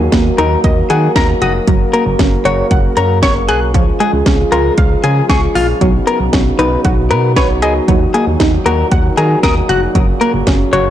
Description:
synth-pop; 116 BPM; 4/4; straight; A4 = 443 Hz
warm French horn section; sustained chords; 0.0-10.9 s; Bb2 to Bb4; -18 LUFS; equal
solid FM bass; bass; 0.0-10.9 s; F1 to Eb3; -16 LUFS; equal
analog pluck; arpeggios; 0.1-10.9 s; F3 to Gb6; -18 LUFS; right 3 dB; chorus, ping-pong delay
house drum kit; drums; 0.1-10.8 s; hi-hat, kick drum, snare drum; -14 LUFS; equal
direct-recorded clean electric guitar; second line; 0.4-10.9 s; F4 to Db5; -16 LUFS; left 4 dB; ping-pong delay
light reverb; blown-out, overdriven recording, overdrive; -10 LUFS; side -11 dB against mid
0.0-10.9 A section
0.0 Ebm; 1.7 Gb; 3.7 Db; 5.8 Cbadd9; 7.9 Ebm; 10.0 Gb
0.12 0.64 1.16 | 1.68 2.19 2.71 3.23 | 3.74 4.26 4.78 5.30 | 5.81 6.33 6.85 7.37 | 7.88 8.40 8.92 9.43 | 9.95 10.47

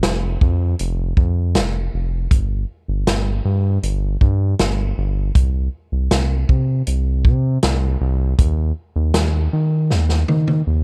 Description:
dream pop; 79 BPM; 4/4; straight; C minor; A4 = 440 Hz
round analog bass; bass; 0.0-10.8 s; F1 to Eb3; -20 LUFS; equal
vintage drum kit; drums; 0.0-10.7 s; hi-hat, kick drum, snare drum, toms; -20 LUFS; equal
little or no reverb; dark, warm production; -19 LUFS; mono
0.0-10.8 A section
drum fill 9.9-10.8
0.03 0.79 1.55 | 2.31 3.07 3.83 4.59 | 5.35 6.11 6.87 7.63 | 8.39 9.15 9.91 10.67

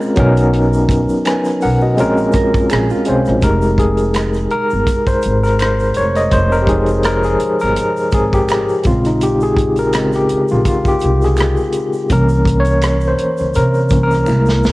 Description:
R&B, neo-soul; 83 BPM; 4/4; swing 54% on 16ths; A4 = 440 Hz
overdriven tine electric piano; accompaniment; 0.0-14.7 s; Db3 to Ab5; -14 LUFS; left 1 dB; fast tremolo, cassette tape
tube shaker and finger snaps; percussion; 0.0-14.7 s; -35 LUFS; right 4 dB
upright bass; bass; 0.2-14.7 s; E1 to C3; -17 LUFS; equal
warm soul drum kit; drums; 0.2-14.7 s; hi-hat, kick drum, rim click, snare drum; -19 LUFS; equal; cassette tape
mellow electric guitar; second line; 2.4-3.4 s; F4 to Bb4; -22 LUFS; right 6 dB; cassette tape
studio reverb; home recording on cassette; -12 LUFS; side -19 dB against mid
0.0-3.4 A section; 3.4-14.7 B section
tine electric piano solo 3.4-14.7; drum fill 14.3-14.7
0.2 Bmaj9; 2.0 Bbm7; 3.4 Fm7; 8.8 Bbm9; 12.1 C7b9
| 0.54 1.26 1.98 2.70 | 3.43 4.15 4.87 5.59 | 6.32 7.04 7.76 8.49 | 9.21 9.93 10.66 11.38 | 12.10 12.82 13.55 14.27

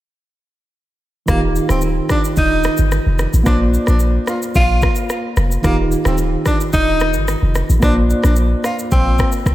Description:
afrobeats; 110 BPM; 4/4; straight; A4 = 444 Hz
warm tenor saxophone; melody; 1.3-9.3 s; Bb3 to F4; -20 LUFS; equal; diffuse ambient delay
tine electric piano; accompaniment; 1.3-9.5 s; Eb3 to D5; -21 LUFS; right 1 dB; medium tremolo
warm 808-style bass; bass; 1.3-9.5 s; D1 to C2; -16 LUFS; equal
afro-pop drum kit; drums; 1.3-9.5 s; kick drum, rim click, shaker; -20 LUFS; equal
moderate plate reverb, RT60 2.5 s; dreamy mix soaked in reverb; -13 LUFS; side -15 dB against mid
1.3-9.5 A section
1.3 Ebadd9; 3.5 Bbadd9; 5.6 Ebadd9; 7.8 Bbadd9
| 1.28 1.83 2.37 2.92 | 3.46 4.01 4.55 5.10 | 5.64 6.19 6.74 7.28 | 7.83 8.37 8.92 9.46

